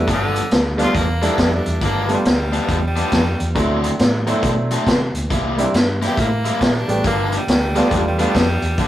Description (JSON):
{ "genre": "electric blues shuffle", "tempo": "138 BPM", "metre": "4/4", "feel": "swing 63% on 8ths", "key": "G mixolydian", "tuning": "A4 = 440 Hz", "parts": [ { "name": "edgy tenor saxophone", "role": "melody", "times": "0.0-8.9 s", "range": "D3 to G4", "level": "-24 LUFS", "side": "equal", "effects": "none" }, { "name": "bright upright piano", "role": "accompaniment", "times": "0.0-8.3 s", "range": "F#3 to C5", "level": "-21 LUFS", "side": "right 1 dB", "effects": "none" }, { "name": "fingered electric bass", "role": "bass", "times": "0.0-8.9 s", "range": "G1 to C3", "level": "-22 LUFS", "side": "equal", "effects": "none" }, { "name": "raw garage guitar", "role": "riff", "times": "0.1-8.9 s", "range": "G2 to F#4", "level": "-23 LUFS", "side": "left 1 dB", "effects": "overdrive" }, { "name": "vintage drum kit", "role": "drums", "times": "0.1-8.9 s", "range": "hi-hat, kick drum, snare drum", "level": "-20 LUFS", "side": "equal", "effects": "none" } ], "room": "moderate stone room reverb, RT60 1.3 s", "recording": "rough rehearsal-room recording", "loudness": "-15 LUFS", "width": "side -13 dB against mid", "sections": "0.0-8.9 A section", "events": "tenor saxophone solo 0.0-8.9", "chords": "0.0 G7; 3.6 D7; 5.3 C7; 7.0 G7" }